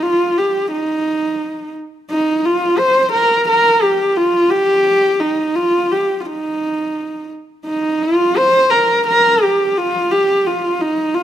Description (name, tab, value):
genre	mongolian traditional, Mongolian folk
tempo	87 BPM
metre	4/4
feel	straight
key	unclear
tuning	A4 = 440 Hz
part	dark horsehead fiddle	solo	0.0-11.2 s	Eb4 to C5	-13 LUFS	equal	none
room	light reverb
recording	close, detailed microphones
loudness	-13 LUFS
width	side -11 dB against mid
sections	0.0-11.2 A section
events	none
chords	none